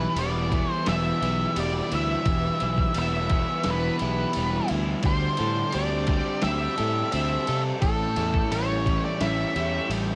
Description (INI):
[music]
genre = rock, shoegaze and dream pop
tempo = 86 BPM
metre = 4/4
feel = straight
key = E minor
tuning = A4 = 440 Hz
[part]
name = octave-fuzz lead guitar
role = melody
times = 0.0-9.9 s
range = A4 to E5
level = -31 LUFS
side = equal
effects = distortion, cassette tape, analog delay
[part]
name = string machine, violins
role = sustained chords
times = 0.0-10.2 s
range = A4 to E6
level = -44 LUFS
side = equal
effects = none
[part]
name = twelve-string electric guitar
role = arpeggios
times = 0.0-10.2 s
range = G3 to A4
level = -40 LUFS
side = equal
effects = none
[part]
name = crunchy overdriven guitar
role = riff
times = 0.0-10.2 s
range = A2 to A4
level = -34 LUFS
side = equal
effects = subtle chorus, cassette tape
[part]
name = overdriven semi-hollow guitar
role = riff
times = 0.0-10.2 s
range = A2 to A4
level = -33 LUFS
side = equal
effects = reverse reverb, cassette tape
[part]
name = fuzz fingered electric bass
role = bass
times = 0.0-10.1 s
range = E1 to C3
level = -31 LUFS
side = equal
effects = overdrive
[part]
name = detuned 8-bit digital drum machine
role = drums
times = 0.2-10.1 s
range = kick drum, ride cymbal, snare drum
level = -33 LUFS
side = equal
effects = cassette tape
[sound]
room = light reverb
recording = home recording on cassette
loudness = -25 LUFS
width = mono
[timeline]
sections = 0.0-10.2 A section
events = none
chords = 0.0 Em; 5.0 D7sus4; 7.8 A7